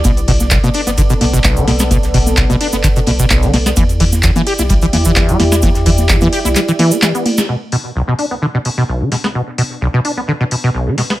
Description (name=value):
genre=acid house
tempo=129 BPM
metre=4/4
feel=swing 53% on 16ths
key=B minor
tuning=A4 = 444 Hz
part: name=dark analog pad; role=sustained chords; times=0.0-11.2 s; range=B3 to D5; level=-21 LUFS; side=equal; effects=chorus, sidechain pumping
part: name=acid bass, saw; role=riff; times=0.0-11.1 s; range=B1 to G4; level=-16 LUFS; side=equal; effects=tube saturation, analog chorus, cassette tape, digital delay
part: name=warm sub bass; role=bass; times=0.0-6.6 s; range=F#1 to E2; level=-17 LUFS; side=equal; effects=sidechain pumping
part: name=booming analog drum machine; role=drums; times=0.0-11.2 s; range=congas, handclaps, hi-hat, ride cymbal, snare drum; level=-17 LUFS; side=equal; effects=none
part: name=damped 70s drum kit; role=drums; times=0.0-11.1 s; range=hi-hat, snare drum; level=-32 LUFS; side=right 3 dB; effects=none
part: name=electronic kick drum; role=drums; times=0.0-6.2 s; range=none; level=-15 LUFS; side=equal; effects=none
part: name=cabasa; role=percussion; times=0.0-7.5 s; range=none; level=-24 LUFS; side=right 4 dB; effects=none
room=light reverb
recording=none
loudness=-11 LUFS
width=side -15 dB against mid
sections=0.0-7.5 A section; 7.5-11.2 B section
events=drop 0.0-7.5; drum fill 7.0-7.5; band accent 7.4; filter sweep on acid bass 7.5-11.2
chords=0.0 Bm7; 3.8 Em7; 7.5 Bm7